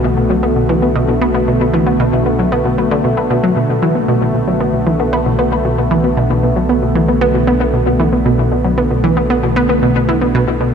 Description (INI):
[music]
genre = ambient, sequencer-driven space music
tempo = 115 BPM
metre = 4/4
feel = straight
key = B minor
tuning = A4 = 441 Hz
[part]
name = sweeping resonant pad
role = sustained chords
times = 0.0-10.7 s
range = D3 to B4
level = -16 LUFS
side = equal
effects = chorus
[part]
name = analog pluck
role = riff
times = 0.0-10.7 s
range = B2 to B3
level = -14 LUFS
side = equal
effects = chorus, ping-pong delay
[part]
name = warm sub bass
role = bass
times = 0.0-10.7 s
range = B1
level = -22 LUFS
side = equal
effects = none
[sound]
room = wet cathedral reverb, RT60 5.6 s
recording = in a vast, echoing space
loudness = -12 LUFS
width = side -7 dB against mid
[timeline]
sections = 0.0-10.7 A section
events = none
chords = 0.0 Bm